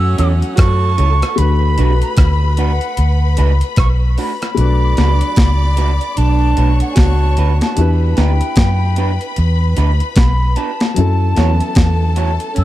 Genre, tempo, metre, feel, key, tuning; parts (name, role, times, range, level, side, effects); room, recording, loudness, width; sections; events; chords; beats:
lovers rock reggae; 75 BPM; 4/4; swing 60% on 16ths; B minor; A4 = 439 Hz
hollow concert flute; melody; 0.0-12.6 s; F#5 to E6; -22 LUFS; right 1 dB; tape echo
bright saxophone section; second line; 0.0-12.6 s; E3 to F#4; -25 LUFS; right 5 dB; tape echo
warm studio string section; second line; 0.0-12.6 s; F#4 to D6; -27 LUFS; left 5 dB
clear grand piano; accompaniment; 0.0-12.6 s; F#3 to B4; -24 LUFS; left 5 dB; tape echo
vintage muted fingered electric bass; bass; 0.0-12.6 s; B1 to F#2; -13 LUFS; equal
electric guitar through a small old amp; stabs; 0.2-12.3 s; A3 to C#5; -25 LUFS; right 6 dB; lush chorus
clean 12-bit digital drum machine; drums; 0.2-12.6 s; hi-hat, kick drum, rim click, snare drum; -15 LUFS; equal
little or no reverb; dark, warm production; -12 LUFS; side -14 dB against mid
0.0-12.6 A section
0.0 F#m7; 1.4 Bm7; 7.8 Em7; 11.0 F#m7
0.58 | 1.38 2.18 2.98 3.78 | 4.58 5.37 6.17 6.97 | 7.77 8.57 9.37 10.17 | 10.96 11.76 12.56